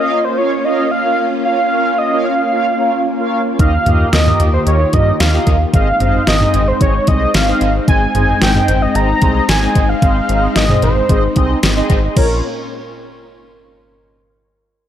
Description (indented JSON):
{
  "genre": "synth-pop",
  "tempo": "112 BPM",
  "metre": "4/4",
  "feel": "straight",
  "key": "Bb dorian",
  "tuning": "A4 = 438 Hz",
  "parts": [
    { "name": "octave-doubled lead", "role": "melody", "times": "0.0-12.4 s", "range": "Bb4 to Bb5", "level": "-17 LUFS", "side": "right 1 dB", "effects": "chorus, tape echo" },
    { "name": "mellow synth brass", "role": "accompaniment", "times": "0.0-12.4 s", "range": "C4 to F5", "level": "-20 LUFS", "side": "right 1 dB", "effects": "chorus, phaser, tape echo" },
    { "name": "soft string machine", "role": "sustained chords", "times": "0.0-12.4 s", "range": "Bb2 to G4", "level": "-20 LUFS", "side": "left 1 dB", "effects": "ensemble chorus" },
    { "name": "round analog bass", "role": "bass", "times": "3.6-12.4 s", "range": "Ab1 to G2", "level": "-16 LUFS", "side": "equal", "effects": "none" },
    { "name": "pop drum kit", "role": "drums", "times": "3.6-12.3 s", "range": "crash cymbal, hi-hat, kick drum, snare drum, toms", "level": "-15 LUFS", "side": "equal", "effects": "overdrive" }
  ],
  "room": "moderate spring reverb, RT60 2.6 s",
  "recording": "echo-heavy mix, faint mains hum",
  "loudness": "-11 LUFS",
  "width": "side -10 dB against mid",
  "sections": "0.0-12.2 A section; 12.2-14.3 B section",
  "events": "none",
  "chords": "0.0 Bbm; 3.6 Ebadd9; 5.7 Ab; 12.2 Bbm"
}